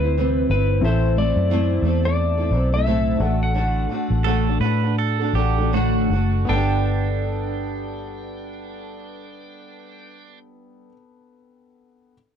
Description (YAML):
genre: acoustic pop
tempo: 77-90 BPM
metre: 4/4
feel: swing 60% on 16ths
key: G major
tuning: A4 = 440 Hz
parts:
  - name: clean lap steel guitar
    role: melody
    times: 0.0-10.4 s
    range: B4 to G5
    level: -28 LUFS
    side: left 3 dB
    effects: none
  - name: fingerpicked steel-string acoustic guitar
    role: accompaniment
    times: 0.0-11.0 s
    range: A2 to C5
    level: -25 LUFS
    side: equal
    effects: double-tracked left and right
  - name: warm concert grand piano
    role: accompaniment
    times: 0.0-12.1 s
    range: B3 to G5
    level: -32 LUFS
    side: left 5 dB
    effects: none
  - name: vintage muted fingered electric bass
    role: bass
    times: 0.0-10.9 s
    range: F#1 to A2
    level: -21 LUFS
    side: equal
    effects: none
  - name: pedal steel guitar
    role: second line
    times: 4.2-10.4 s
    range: D4 to B4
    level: -29 LUFS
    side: right 16 dB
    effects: none
room: little or no reverb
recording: dry, close 1970s-style studio recording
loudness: -18 LUFS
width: side -8 dB against mid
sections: 0.0-6.5 A section; 6.5-9.6 B section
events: slowing down 0.8-6.5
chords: 0.0 C; 0.8 Am; 3.2 D/A; 6.5 Gadd9